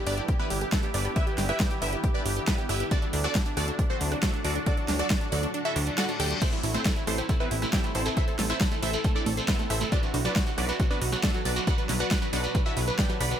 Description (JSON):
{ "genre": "uplifting trance", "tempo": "137 BPM", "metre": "4/4", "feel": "straight", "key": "A dorian", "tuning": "A4 = 438 Hz", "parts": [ { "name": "wide unison pluck", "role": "melody", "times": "0.0-13.4 s", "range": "G3 to B5", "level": "-32 LUFS", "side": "right 1 dB", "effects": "phaser, sidechain pumping, dub echo" }, { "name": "plucky unison lead", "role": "second line", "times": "0.0-13.4 s", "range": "D4 to B5", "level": "-36 LUFS", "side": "equal", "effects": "sidechain pumping, dub echo" }, { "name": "shimmering ambient pad", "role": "sustained chords", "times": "0.0-13.4 s", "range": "A2 to F#4", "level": "-36 LUFS", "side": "equal", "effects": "chorus, built-in reverb, sidechain pumping" }, { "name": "plucky analog bass", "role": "bass", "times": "0.1-13.3 s", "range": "G1 to D2", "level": "-30 LUFS", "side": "equal", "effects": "sidechain pumping" }, { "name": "big-room dance drum kit", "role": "drums", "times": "0.1-13.4 s", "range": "crash cymbal, hi-hat, rim click, snare drum", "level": "-32 LUFS", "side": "equal", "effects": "sidechain pumping on hats, sidechain pumping on cymbals" }, { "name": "electronic kick drum", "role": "drums", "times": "0.3-13.1 s", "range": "none", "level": "-27 LUFS", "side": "equal", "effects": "none" }, { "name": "reverse cymbal", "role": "sound effects", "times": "5.7-6.4 s", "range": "none", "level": "-38 LUFS", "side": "left 6 dB", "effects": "none" }, { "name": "wide unison pluck", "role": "arpeggios", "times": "6.4-13.3 s", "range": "F#3 to E5", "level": "-35 LUFS", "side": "right 3 dB", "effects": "sidechain pumping, dub echo" }, { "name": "shekere", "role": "percussion", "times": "6.4-13.4 s", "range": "none", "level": "-36 LUFS", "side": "right 2 dB", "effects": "none" } ], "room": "digital ambience", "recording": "none", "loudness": "-24 LUFS", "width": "side -9 dB against mid", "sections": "0.0-13.4 A section", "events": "kick drops out 5.5-6.4; reverse cymbal 5.7-6.4", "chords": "0.0 G6; 2.9 D; 6.4 Am; 9.9 Bm", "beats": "0.29 0.72 | 1.16 1.60 2.04 2.48 | 2.91 3.35 3.79 4.23 | 4.67 5.10 5.54 5.98 | 6.42 6.86 7.29 7.73 | 8.17 8.61 9.04 9.48 | 9.92 10.36 10.80 11.23 | 11.67 12.11 12.55 12.99" }